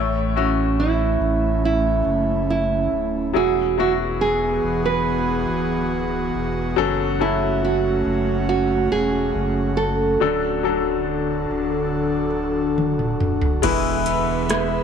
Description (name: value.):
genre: pop ballad.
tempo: 70 BPM.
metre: 4/4.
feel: straight.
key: unclear.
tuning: A4 = 440 Hz.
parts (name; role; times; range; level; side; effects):
bright grand piano; accompaniment; 0.0-14.8 s; A2 to C#5; -25 LUFS; left 10 dB; none.
airy breathy pad; sustained chords; 0.3-14.8 s; D3 to B5; -24 LUFS; equal; chorus.
saturated sub bass; bass; 0.0-14.8 s; D1 to A1; -27 LUFS; right 1 dB; none.
nylon-string guitar; melody; 0.4-14.8 s; C#4 to B4; -22 LUFS; right 5 dB; none.
booming analog drum machine; drums; 12.8-14.7 s; crash cymbal, hi-hat, kick drum, rim click, toms; -23 LUFS; right 1 dB; overdrive.
twelve-string electric guitar; arpeggios; 13.6-14.8 s; E2 to B3; -26 LUFS; right 12 dB; spring reverb.
room: moderate echo chamber reverb, RT60 2.1 s.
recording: 1960s-style stereo with parts hard left and right.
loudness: -18 LUFS.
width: side -7 dB against mid.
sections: 0.0-13.6 A section; 13.6-14.8 B section.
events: drum fill 12.8-13.6.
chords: 0.0 A; 3.4 Eadd9; 6.8 F#m; 10.2 D; 13.6 E.